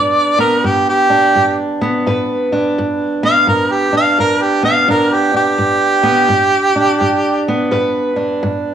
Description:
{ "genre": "acoustic country blues, solo or duo", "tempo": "85 BPM", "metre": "4/4", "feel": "swing 63% on 8ths", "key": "G mixolydian", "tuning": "A4 = 439 Hz", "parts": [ { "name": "clear harmonica", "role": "melody", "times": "0.0-7.4 s", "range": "G4 to F5", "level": "-12 LUFS", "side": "right 1 dB", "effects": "cassette tape, plate reverb" }, { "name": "fingerpicked steel-string acoustic guitar", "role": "accompaniment", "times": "0.0-8.7 s", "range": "G2 to B4", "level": "-16 LUFS", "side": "equal", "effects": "plate reverb" } ], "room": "moderate booth ambience, RT60 0.3 s", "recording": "home recording on cassette, small room ambience", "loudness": "-12 LUFS", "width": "side -9 dB against mid", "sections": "0.0-8.7 A section", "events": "harmonica solo 0.0-8.7", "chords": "0.0 G", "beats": "| 0.65 1.36 2.06 2.77 | 3.48 4.18 4.89 5.60 | 6.30 7.01 7.72 8.42" }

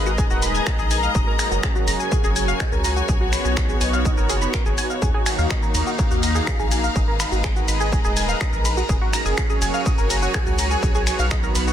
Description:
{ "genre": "melodic techno", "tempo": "124 BPM", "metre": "4/4", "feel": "straight", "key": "G# dorian", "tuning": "A4 = 442 Hz", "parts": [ { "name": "lush unison pad", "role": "sustained chords", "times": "0.0-11.7 s", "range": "D#3 to E#5", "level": "-28 LUFS", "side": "right 1 dB", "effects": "chorus, phaser, sidechain pumping" }, { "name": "round analog bass", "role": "bass", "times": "0.0-11.7 s", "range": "D#1 to D#2", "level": "-24 LUFS", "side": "equal", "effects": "sidechain pumping" }, { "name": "clear symphonic string section", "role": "texture", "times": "0.0-11.7 s", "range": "B3 to A#5", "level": "-27 LUFS", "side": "left 2 dB", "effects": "sidechain pumping" }, { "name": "tight sequenced synth", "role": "arpeggios", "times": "0.1-11.7 s", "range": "F#4 to A#6", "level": "-26 LUFS", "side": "right 1 dB", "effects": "chorus, cassette tape, sidechain pumping, tape echo" }, { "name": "techno drum kit", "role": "drums", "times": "0.1-11.7 s", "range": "finger snaps, hi-hat, ride cymbal, shaker", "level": "-27 LUFS", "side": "left 1 dB", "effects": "soft clipping on snare" }, { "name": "electronic kick drum", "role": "drums", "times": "0.2-11.4 s", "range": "none", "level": "-22 LUFS", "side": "equal", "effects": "distortion" } ], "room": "digital ambience", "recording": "dense, heavily limited modern master", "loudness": "-18 LUFS", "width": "side -10 dB against mid", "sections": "0.0-11.7 A section", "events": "none", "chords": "0.0 G#m; 1.1 F#; 3.1 B; 5.0 D#m; 7.0 G#m; 8.9 F#; 10.8 B", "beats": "0.18 0.67 | 1.15 1.63 2.12 2.60 | 3.09 3.57 4.05 4.54 | 5.02 5.50 5.99 6.47 | 6.96 7.44 7.92 8.41 | 8.89 9.38 9.86 10.34 | 10.83 11.31" }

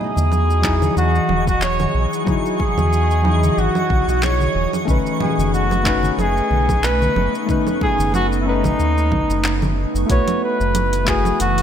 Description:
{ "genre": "sunset chillout", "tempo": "92 BPM", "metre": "4/4", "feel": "swing 55% on 16ths", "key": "unclear", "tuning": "A4 = 437 Hz", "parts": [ { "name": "warm flugelhorn", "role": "melody", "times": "0.0-11.6 s", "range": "D#4 to C#5", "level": "-21 LUFS", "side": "equal", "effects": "vintage 12-bit sampler grit, ping-pong delay" }, { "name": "soft electric-piano-like synth keys", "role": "accompaniment", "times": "0.0-11.6 s", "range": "F#3 to B4", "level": "-24 LUFS", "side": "moving between left 7 dB and right 5 dB", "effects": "chorus, auto-pan" }, { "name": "ethereal airy pad", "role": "sustained chords", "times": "0.0-11.6 s", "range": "E3 to D#5", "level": "-24 LUFS", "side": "equal", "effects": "ensemble chorus, built-in reverb, phaser" }, { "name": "twinkling granular texture", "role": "texture", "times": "0.4-10.1 s", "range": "C#6", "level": "-32 LUFS", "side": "right 2 dB", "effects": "built-in reverb" }, { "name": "round analog bass", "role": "bass", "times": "0.2-11.6 s", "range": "E1 to E2", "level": "-20 LUFS", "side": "equal", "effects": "none" }, { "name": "deep house drum kit", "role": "drums", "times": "0.2-11.6 s", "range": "congas, handclaps, hi-hat, shaker", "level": "-25 LUFS", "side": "right 3 dB", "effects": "none" }, { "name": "congas", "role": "percussion", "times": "0.2-9.7 s", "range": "none", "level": "-29 LUFS", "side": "left 1 dB", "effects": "none" }, { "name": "electronic kick drum", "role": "drums", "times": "0.6-11.2 s", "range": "none", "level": "-22 LUFS", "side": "equal", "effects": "none" } ], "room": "light reverb, digital ambience", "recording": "none", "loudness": "-15 LUFS", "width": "side -9 dB against mid", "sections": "0.0-10.1 A section; 10.1-11.6 B section", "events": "none", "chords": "0.0 Emaj9; 4.9 B9; 10.1 B7sus4", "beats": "0.31 0.96 1.62 | 2.27 2.92 3.57 4.23 | 4.88 5.53 6.18 6.83 | 7.49 8.14 8.79 9.44 | 10.10 10.75 11.40" }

